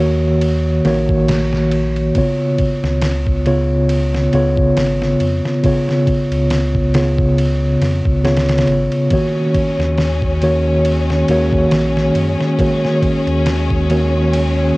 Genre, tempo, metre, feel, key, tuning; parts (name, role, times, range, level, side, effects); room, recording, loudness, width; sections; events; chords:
trip hop; 69 BPM; 4/4; swing 56% on 16ths; Eb minor; A4 = 440 Hz
mellow tine electric piano; accompaniment; 0.0-14.8 s; Db3 to Db5; -15 LUFS; equal; tremolo, cassette tape, tape echo
warm sub bass; bass; 0.0-14.7 s; Ab1 to Gb2; -20 LUFS; equal
dusty soul sampler-style drum kit; drums; 0.4-14.6 s; kick drum, ride cymbal, snare drum; -22 LUFS; equal; vintage 12-bit sampler grit, small room ambience
clear studio string section; sustained chords; 9.1-14.8 s; Db4; -23 LUFS; left 2 dB; cassette tape
bowed-like drone; texture; 10.1-14.8 s; Ab3 to Ab4; -32 LUFS; equal
light reverb; home recording on cassette; -13 LUFS; side -22 dB against mid
0.0-14.8 A section
0.0 Ebm7; 2.2 Db7; 9.1 Ebm7